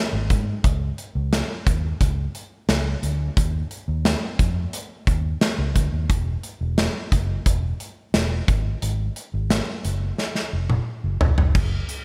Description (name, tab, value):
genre	1980s-style pop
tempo	88 BPM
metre	4/4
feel	straight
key	unclear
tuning	A4 = 440 Hz
part	vintage muted fingered electric bass	bass	0.1-11.8 s	E1 to Ab2	-27 LUFS	equal	none
part	big rock drum kit	drums	0.3-12.0 s	crash cymbal, hi-hat, kick drum, snare drum, toms	-24 LUFS	equal	gated reverb
room	light reverb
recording	bright 1980s-style digital production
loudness	-23 LUFS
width	mono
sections	0.0-11.6 A section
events	drum fill 10.2-11.6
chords	none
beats	| 0.64 1.32 2.00 2.69 | 3.37 4.05 4.73 5.41 | 6.10 6.78 7.46 8.14 | 8.82 9.51 10.19 10.87 | 11.55